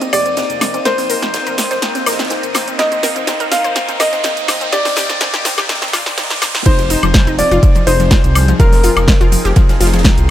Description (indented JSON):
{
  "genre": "progressive house",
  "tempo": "124 BPM",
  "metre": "4/4",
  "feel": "straight",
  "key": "F dorian",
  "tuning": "A4 = 440 Hz",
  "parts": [
    { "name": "warm grand piano", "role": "melody", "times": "0.0-10.3 s", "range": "Bb4 to F5", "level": "-18 LUFS", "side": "left 1 dB", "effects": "tape echo" },
    { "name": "supersaw pad", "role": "sustained chords", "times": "0.0-10.3 s", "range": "F3 to Ab4", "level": "-24 LUFS", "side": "equal", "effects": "phaser, sidechain pumping" },
    { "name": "analog pluck", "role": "arpeggios", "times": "0.0-10.1 s", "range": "F3 to C5", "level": "-21 LUFS", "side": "left 1 dB", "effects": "chorus, sidechain pumping, tape echo" },
    { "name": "big rock drum kit", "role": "drums", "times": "0.0-10.3 s", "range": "hi-hat, ride cymbal, snare drum", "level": "-28 LUFS", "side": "right 2 dB", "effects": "none" },
    { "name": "deep house drum kit", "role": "drums", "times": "0.0-10.3 s", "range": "cabasa, crash cymbal, hi-hat, snare drum, woodblock", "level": "-18 LUFS", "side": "equal", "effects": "none" },
    { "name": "riser", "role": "sound effects", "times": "0.8-6.7 s", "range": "none", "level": "-25 LUFS", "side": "equal", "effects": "none" },
    { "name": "drifting glass-harmonics texture", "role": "texture", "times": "0.0-6.7 s", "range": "Eb7", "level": "-35 LUFS", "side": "right 4 dB", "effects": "none" },
    { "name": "dark detuned saw bass", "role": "bass", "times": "0.1-10.3 s", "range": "F1 to C2", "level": "-16 LUFS", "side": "equal", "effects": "sidechain pumping" },
    { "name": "electronic kick drum", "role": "drums", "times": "6.7-10.2 s", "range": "none", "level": "-11 LUFS", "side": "equal", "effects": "none" }
  ],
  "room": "light reverb, digital ambience",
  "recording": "high-pass filter",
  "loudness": "-11 LUFS",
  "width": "side -12 dB against mid",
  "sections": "0.0-6.7 A section; 6.7-10.3 B section",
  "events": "build-up 0.0-6.7; drum fill 0.0-6.7; filter sweep on synth arpeggio sound 0.0-6.7; filter sweep 0.0-6.7; riser 0.8-6.7; drop 6.7-10.3",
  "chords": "0.0 Cm7/F; 6.7 Fm7"
}